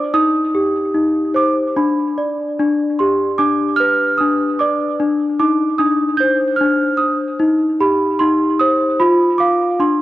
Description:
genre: children's music, lullaby.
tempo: 75 BPM.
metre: 3/4.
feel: rubato.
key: C harmonic minor.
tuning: A4 = 443 Hz.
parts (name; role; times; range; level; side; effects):
celesta; solo; 0.0-10.0 s; D4 to G6; -14 LUFS; equal; tape echo.
room: wet recital hall reverb, RT60 1.4 s.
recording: worn, warbling old tape, cassette tape, warbly pitch drift.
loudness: -14 LUFS.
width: side -15 dB against mid.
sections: 0.0-10.0 A section.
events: none.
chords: 0.1 Cm; 1.8 G; 5.0 Cmadd9; 7.4 Cm; 9.0 N.C..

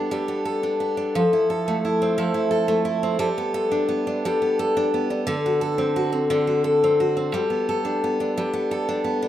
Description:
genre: pop.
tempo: 58 BPM (dotted quarters).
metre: 6/8.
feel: straight.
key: G major.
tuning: A4 = 440 Hz.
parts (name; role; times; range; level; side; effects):
picked steel-string acoustic guitar; solo; 0.0-9.3 s; D3 to A4; -20 LUFS; equal; tape echo.
room: light reverb.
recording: rough home demo mix.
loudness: -20 LUFS.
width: side -11 dB against mid.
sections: 0.0-9.3 A section.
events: none.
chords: 0.0 Gadd9; 1.1 Fmaj7; 3.2 Gadd9; 5.3 D7; 7.3 Gadd9.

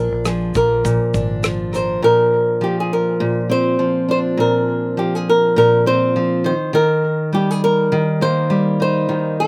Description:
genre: acoustic pop.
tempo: 102 BPM.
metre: 4/4.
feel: swing 55% on 16ths.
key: unclear.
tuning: A4 = 440 Hz.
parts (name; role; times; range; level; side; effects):
flamenco guitar; melody; 0.0-9.5 s; G4 to C5; -19 LUFS; equal; none.
picked steel-string acoustic guitar; accompaniment; 0.0-9.5 s; Bb2 to Bb4; -21 LUFS; equal; slapback echo.
vintage muted fingered electric bass; bass; 0.0-2.0 s; Ab1 to Bb1; -25 LUFS; equal; none.
loose indie drum kit; drums; 0.3-1.9 s; kick drum, rim click, shaker; -26 LUFS; equal; none.
room: little or no reverb.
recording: recorded outdoors, with no room sound.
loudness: -17 LUFS.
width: mono.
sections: 0.0-2.0 A section; 2.0-9.5 B section.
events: none.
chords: 0.0 Bb; 2.0 Bbadd9; 6.5 Eb.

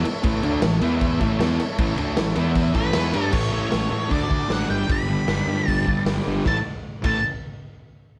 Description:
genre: garage rock duo or trio.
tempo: 154 BPM.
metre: 4/4.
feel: straight.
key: A major, A mixolydian from 3.3 s.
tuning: A4 = 441 Hz.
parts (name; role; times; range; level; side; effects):
overdriven combo organ; sustained chords; 0.0-6.6 s; E4 to E5; -36 LUFS; equal; none.
fuzz guitar; riff; 0.0-7.2 s; G2 to G4; -26 LUFS; equal; distortion.
fuzz fingered electric bass; bass; 0.0-7.2 s; G1 to A2; -30 LUFS; equal; overdrive.
raw garage drum kit; drums; 0.1-7.1 s; crash cymbal, hi-hat, kick drum, snare drum; -28 LUFS; equal; none.
octave-fuzz lead guitar; melody; 2.8-7.2 s; B4 to B5; -29 LUFS; equal; distortion.
room: moderate studio reverb, RT60 0.6 s.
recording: none.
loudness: -22 LUFS.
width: mono.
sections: 0.0-3.3 A section; 3.3-6.4 B section; 6.4-8.0 C section.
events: none.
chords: 0.0 A; 0.8 E5; 1.2 A; 2.4 E5; 2.7 A; 4.1 D; 4.7 G; 6.4 A.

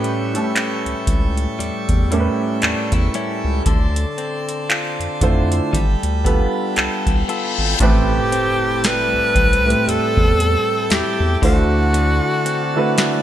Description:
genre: contemporary R&B.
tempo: 58 BPM.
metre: 4/4.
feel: swing 58% on 16ths.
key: A minor.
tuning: A4 = 439 Hz.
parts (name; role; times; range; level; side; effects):
warm concert grand piano; accompaniment; 0.0-13.2 s; A2 to C5; -22 LUFS; right 3 dB; analog chorus.
pipe organ, plenum; sustained chords; 0.0-13.2 s; A4 to C#6; -27 LUFS; right 2 dB; none.
direct-recorded clean electric guitar; arpeggios; 0.0-13.2 s; A2 to A4; -26 LUFS; left 6 dB; wide subtle chorus.
booming analog drum machine; drums; 0.0-13.2 s; handclaps, hi-hat, kick drum, snare drum; -19 LUFS; equal; gated reverb.
round analog bass; bass; 0.9-12.2 s; G1 to F2; -20 LUFS; equal; none.
reverse cymbal and impact; sound effects; 7.0-11.9 s; none; -27 LUFS; left 3 dB; none.
clear alto saxophone; melody; 7.8-13.2 s; F#4 to B4; -19 LUFS; equal; none.
room: light reverb, small room ambience.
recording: bright 1980s-style digital production.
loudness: -15 LUFS.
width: side -11 dB against mid.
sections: 0.0-7.8 A section; 7.8-13.2 B section.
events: reverse cymbal 7.0-7.8; impact 7.8-11.9.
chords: 0.0 A7; 3.7 Dm7; 5.7 G9; 7.8 Am7; 11.4 D7.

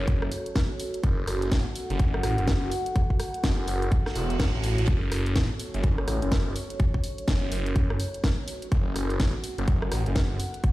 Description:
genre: bass house.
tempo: 125 BPM.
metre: 4/4.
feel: swing 61% on 16ths.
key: F# minor.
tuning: A4 = 440 Hz.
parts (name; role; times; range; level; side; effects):
dark analog pad; sustained chords; 0.0-10.7 s; F#4 to F#5; -35 LUFS; right 1 dB; chorus, phaser, sidechain pumping.
phased detuned saw bass; bass; 0.0-10.4 s; E1 to A1; -27 LUFS; equal; phaser, sidechain pumping.
electronic kick drum; drums; 0.1-10.7 s; none; -24 LUFS; equal; none.
garage drum kit; drums; 0.1-10.7 s; hi-hat, rim click, snare drum; -33 LUFS; equal; none.
reverse cymbal; sound effects; 4.0-4.9 s; none; -38 LUFS; right 5 dB; none.
room: little or no reverb.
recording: played on a big sound system in a bare room, large studio reverb.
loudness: -24 LUFS.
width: side -17 dB against mid.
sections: 0.0-10.7 A section.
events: reverse cymbal 4.0-4.9.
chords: 0.0 F#m.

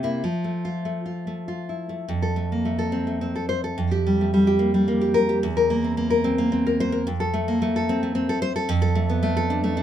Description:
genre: romantic piece for solo classical guitar.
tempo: 95-115 BPM.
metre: 3/4.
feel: rubato.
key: F major.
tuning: A4 = 441 Hz.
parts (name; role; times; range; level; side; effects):
nylon-string guitar; solo; 0.0-9.8 s; E2 to C5; -21 LUFS; equal; none.
room: moderate small room ambience, RT60 0.5 s.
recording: minimal, uncompressed stereo recording.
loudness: -21 LUFS.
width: side -10 dB against mid.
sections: 0.0-2.1 A section; 2.1-9.8 B section.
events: none.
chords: 0.3 F; 3.8 Gm7/F; 5.4 C7/E; 7.1 F; 8.7 Dm/F.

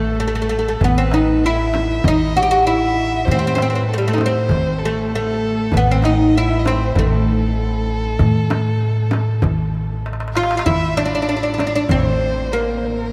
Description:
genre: Arabic maqam ensemble.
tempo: 97 BPM.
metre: 4/4.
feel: straight.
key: A minor.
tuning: A4 = 440 Hz.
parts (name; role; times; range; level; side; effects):
oud; melody; 0.0-13.1 s; G3 to G4; -21 LUFS; equal; none.
warm violin; second line; 0.0-13.1 s; A4 to F5; -28 LUFS; equal; none.
upright bass; bass; 0.0-13.1 s; A1 to A2; -23 LUFS; equal; none.
darbuka; percussion; 0.2-12.3 s; none; -28 LUFS; equal; none.
frame drum; percussion; 0.8-12.0 s; none; -27 LUFS; equal; none.
room: wet cathedral reverb, RT60 5.6 s.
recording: in a vast, echoing space.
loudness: -18 LUFS.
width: mono.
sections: 0.0-10.7 A section; 10.7-13.1 B section.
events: drum fill 10.1-10.7.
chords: none.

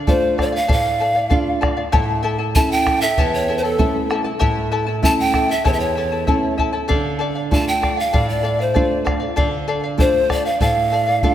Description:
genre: andean folk, Andean ensemble.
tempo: 97 BPM.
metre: 4/4.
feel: straight.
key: D minor.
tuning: A4 = 435 Hz.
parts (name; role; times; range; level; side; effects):
charango; accompaniment; 0.0-11.3 s; E4 to A5; -23 LUFS; left 5 dB; none.
nylon-string guitar; accompaniment; 0.0-11.3 s; E2 to F4; -22 LUFS; right 3 dB; none.
breathy pan flute; melody; 0.1-11.3 s; A4 to A5; -20 LUFS; equal; diffuse ambient delay.
bombo; percussion; 0.1-11.3 s; none; -21 LUFS; equal; none.
room: wet lush hall reverb, RT60 2.6 s.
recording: dreamy mix soaked in reverb.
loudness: -16 LUFS.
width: side -11 dB against mid.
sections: 0.0-11.3 A section.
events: none.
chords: 0.0 Dm; 1.9 A; 6.9 Dm.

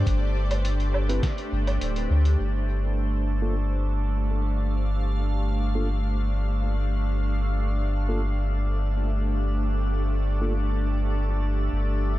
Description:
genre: ambient dub.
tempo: 103 BPM.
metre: 4/4.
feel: straight.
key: unclear.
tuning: A4 = 440 Hz.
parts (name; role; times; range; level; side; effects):
soft additive organ-like pad; sustained chords; 0.0-12.2 s; A3 to F5; -32 LUFS; equal; ensemble chorus, built-in reverb.
warm sub bass; bass; 0.0-12.2 s; D1 to D2; -24 LUFS; equal; none.
drifting glass-harmonics texture; texture; 0.0-12.2 s; D4 to D5; -37 LUFS; right 2 dB; chorus, built-in reverb.
electronic kick drum; drums; 0.1-1.4 s; none; -26 LUFS; equal; overdrive.
lo-fi sampler-style drum kit; drums; 0.1-2.4 s; hi-hat, snare drum, woodblock; -35 LUFS; right 1 dB; low-pass filter on perc, low-pass filter on hats, low-pass filter on snare, dub echo.
mellow tine electric piano; stabs; 1.1-10.5 s; Bb3 to B4; -38 LUFS; right 1 dB; none.
room: little or no reverb.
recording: faint mains hum.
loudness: -23 LUFS.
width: side -16 dB against mid.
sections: 0.0-2.4 A section; 2.4-12.2 B section.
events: none.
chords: 0.0 Am7/G; 2.4 G7(no3).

